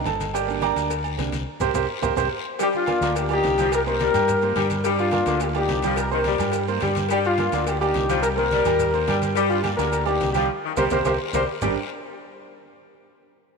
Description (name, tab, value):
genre	latin, salsa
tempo	213 BPM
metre	4/4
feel	straight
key	G minor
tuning	A4 = 443 Hz
part	bright upright piano	accompaniment	0.0-11.8 s	G3 to Bb5	-26 LUFS	right 10 dB	none
part	fingered electric bass	bass	0.0-11.8 s	G1 to G2	-28 LUFS	left 1 dB	none
part	congas	percussion	0.1-11.7 s	none	-34 LUFS	left 2 dB	none
part	cowbell and bongos	percussion	0.1-11.7 s	none	-34 LUFS	left 15 dB	none
part	guiro	percussion	0.1-11.7 s	none	-39 LUFS	left 14 dB	none
part	maracas	percussion	0.1-11.7 s	none	-43 LUFS	right 13 dB	none
part	timbales and agogo bells	percussion	0.1-11.7 s	none	-35 LUFS	right 12 dB	none
part	clear trombone section	melody	2.6-11.4 s	D4 to C5	-23 LUFS	left 2 dB	none
part	clear saxophone section	second line	2.6-11.7 s	D3 to G3	-28 LUFS	left 12 dB	none
room	moderate plate reverb, RT60 3.3 s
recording	1960s-style stereo with parts hard left and right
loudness	-20 LUFS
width	side -4 dB against mid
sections	0.0-2.6 A section; 2.6-11.6 B section; 11.6-12.8 C section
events	upright piano solo 0.0-2.6; band accent 1.5-2.6, 10.5-11.6; drum fill 1.7-2.6, 10.9-11.6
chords	0.3 Gm; 1.5 C5; 2.6 Gm; 3.7 C7(no3); 4.8 Gm; 6.0 C7(no3); 7.1 Gm; 8.2 Cm7; 9.4 Gm; 10.5 C7(no3); 11.6 G5